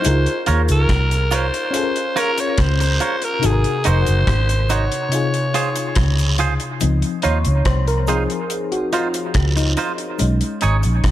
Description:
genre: lovers rock reggae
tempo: 71 BPM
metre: 4/4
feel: straight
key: Db major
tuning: A4 = 441 Hz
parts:
  - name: raspy alto saxophone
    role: melody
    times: 0.0-6.4 s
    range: Ab4 to Db5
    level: -22 LUFS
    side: equal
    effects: dub echo
  - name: FM electric piano with auto-pan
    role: accompaniment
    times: 0.0-11.1 s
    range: C3 to Db5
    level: -23 LUFS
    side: left 3 dB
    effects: phaser
  - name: deep reggae drum kit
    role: drums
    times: 0.0-11.1 s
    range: hi-hat, kick drum, rim click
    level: -23 LUFS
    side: equal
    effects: gated reverb
  - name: cabasa and guiro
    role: percussion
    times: 0.0-11.0 s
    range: none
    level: -31 LUFS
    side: right 4 dB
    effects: none
  - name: vintage muted fingered electric bass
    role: bass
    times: 0.1-11.1 s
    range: F1 to Eb2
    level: -17 LUFS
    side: equal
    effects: none
  - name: twangy electric guitar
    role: stabs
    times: 0.5-10.8 s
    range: Eb4 to Db5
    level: -25 LUFS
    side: right 6 dB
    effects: spring reverb, dub echo
room: light reverb, small room ambience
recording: none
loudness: -16 LUFS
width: side -13 dB against mid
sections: 0.0-6.8 A section; 6.8-11.1 B section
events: FM electric piano solo 6.8-11.1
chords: 0.0 Db6; 1.7 Bbm9/Db; 3.4 Ab7; 5.1 Dbmaj7; 6.8 Dbmaj9; 10.2 Cb69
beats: | 0.05 0.89 1.74 2.58 | 3.43 4.28 5.12 5.97 | 6.81 7.66 8.50 9.35 | 10.19 11.04

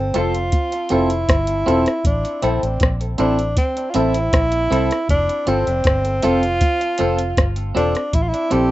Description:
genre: roots reggae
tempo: 79 BPM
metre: 4/4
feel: straight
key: F major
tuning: A4 = 440 Hz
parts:
  - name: breathy tenor saxophone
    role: melody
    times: 0.0-8.7 s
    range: C4 to G4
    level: -21 LUFS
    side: right 1 dB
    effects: tape echo
  - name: dark upright piano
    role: stabs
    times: 0.0-8.7 s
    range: C4 to C5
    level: -22 LUFS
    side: left 3 dB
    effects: none
  - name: vintage muted fingered electric bass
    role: bass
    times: 0.0-8.7 s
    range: E1 to C2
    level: -22 LUFS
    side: equal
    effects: none
  - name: clean electric guitar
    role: accompaniment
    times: 0.1-8.7 s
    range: C4 to A4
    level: -25 LUFS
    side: right 4 dB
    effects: tape echo
  - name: soft vintage rhythm box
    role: drums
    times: 0.1-8.7 s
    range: hi-hat, kick drum, rim click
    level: -19 LUFS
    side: equal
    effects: none
room: moderate small room reverb, RT60 0.6 s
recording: rough home demo mix, nothing above 8.0 kHz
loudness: -16 LUFS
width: side -16 dB against mid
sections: 0.0-8.7 A section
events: none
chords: 0.0 F; 2.0 Am; 5.1 F; 8.1 Am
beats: 0.53 1.29 | 2.05 2.81 3.57 4.33 | 5.09 5.85 6.61 7.37 | 8.13

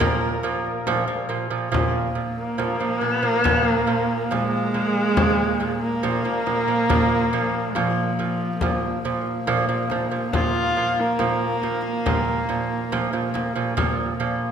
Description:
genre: mongolian traditional, Mongolian folk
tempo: 70 BPM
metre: 4/4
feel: straight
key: unclear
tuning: A4 = 440 Hz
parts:
  - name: clear horsehead fiddle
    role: melody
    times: 0.0-13.9 s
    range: F3 to Bb4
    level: -23 LUFS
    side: equal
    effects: none
  - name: lute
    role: arpeggios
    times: 0.0-14.5 s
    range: Bb2 to F3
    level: -24 LUFS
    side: right 3 dB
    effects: none
  - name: frame drum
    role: percussion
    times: 0.0-14.3 s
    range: none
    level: -28 LUFS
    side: left 3 dB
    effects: none
  - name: warm horsehead fiddle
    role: drone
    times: 1.7-14.5 s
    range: Bb3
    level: -30 LUFS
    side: right 1 dB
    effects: none
room: wet concert hall reverb, RT60 1.8 s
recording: minimal, uncompressed stereo recording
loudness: -20 LUFS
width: side -8 dB against mid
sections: 0.0-1.7 A section; 1.7-14.5 B section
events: none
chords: 0.0 Bb5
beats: 0.02 0.88 | 1.74 2.60 3.46 4.32 | 5.18 6.04 6.90 7.76 | 8.62 9.48 10.34 11.21 | 12.07 12.93 13.79

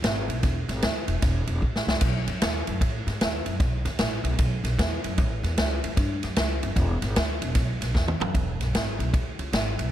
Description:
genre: electric blues shuffle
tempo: 152 BPM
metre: 4/4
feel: swing 64% on 8ths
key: E mixolydian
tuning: A4 = 439 Hz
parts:
  - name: upright bass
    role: bass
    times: 0.0-9.9 s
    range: E1 to A2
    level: -27 LUFS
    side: equal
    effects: none
  - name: swinging big-band drum kit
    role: drums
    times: 0.0-9.9 s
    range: crash cymbal, kick drum, ride cymbal, snare drum, toms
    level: -25 LUFS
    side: equal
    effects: none
room: little or no reverb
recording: none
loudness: -23 LUFS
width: side -12 dB against mid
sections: 0.0-8.4 A section; 8.4-9.9 A section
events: drum fill 1.6-2.0, 8.0-8.4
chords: none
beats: 0.05 | 0.44 0.84 1.23 1.63 | 2.03 2.42 2.82 3.21 | 3.61 4.00 4.40 4.79 | 5.19 5.58 5.98 6.38 | 6.77 7.17 7.56 7.96 | 8.35 8.75 9.14 9.54

